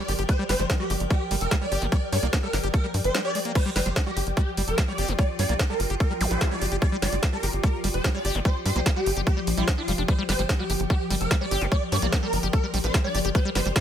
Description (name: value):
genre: psychedelic trance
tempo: 147 BPM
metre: 4/4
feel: straight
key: G minor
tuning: A4 = 440 Hz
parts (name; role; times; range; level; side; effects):
- swarming rave lead; melody; 0.0-13.7 s; F4 to D5; -30 LUFS; equal; chorus, phaser, sidechain pumping, ping-pong delay
- swarming drone; sustained chords; 0.0-13.8 s; F3 to Bb4; -34 LUFS; left 4 dB; built-in reverb, sidechain pumping
- liquid acid bass; riff; 0.0-13.7 s; F3 to G4; -32 LUFS; equal; chorus, auto-pan, vintage 12-bit sampler grit, sidechain pumping, ping-pong delay
- ethereal airy pad; texture; 0.0-13.8 s; G4 to G5; -35 LUFS; right 2 dB; ensemble chorus, built-in reverb, phaser, sidechain pumping
- tight sequencer bass; bass; 0.1-13.7 s; F1 to G2; -27 LUFS; equal; none
- drum and bass drum kit; drums; 0.1-13.8 s; crash cymbal, hi-hat, snare drum; -30 LUFS; equal; overdrive
- electronic kick drum; drums; 0.3-13.8 s; none; -23 LUFS; equal; overdrive
- formant-sweep wobble bass; second line; 5.0-5.6, 11.5-12.3 s; Bb3 to C4; -44 LUFS; left 4 dB; none
- zap; sound effects; 6.2-6.3 s; none; -34 LUFS; equal; none
room: little or no reverb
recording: none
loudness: -22 LUFS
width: side -9 dB against mid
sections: 0.0-13.8 A section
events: none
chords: 0.0 G5